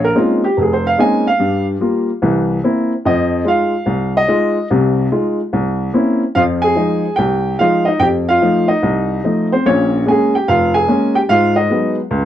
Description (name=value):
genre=solo jazz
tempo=145 BPM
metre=4/4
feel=swing 64% on 8ths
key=F minor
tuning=A4 = 440 Hz
part: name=warm upright piano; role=solo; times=0.0-12.2 s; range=F1 to Ab5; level=-13 LUFS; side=equal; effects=none
room=little or no reverb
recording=dry, close 1970s-style studio recording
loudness=-13 LUFS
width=side -11 dB against mid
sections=0.0-6.3 A section; 6.3-12.2 B section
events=upright piano solo 0.0-6.3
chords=0.0 Bbm11; 1.4 Gm7; 2.2 C7; 3.0 Fm7; 5.5 C7b9; 6.3 Fm7; 8.0 F7; 9.7 Bbm7; 11.3 Abm7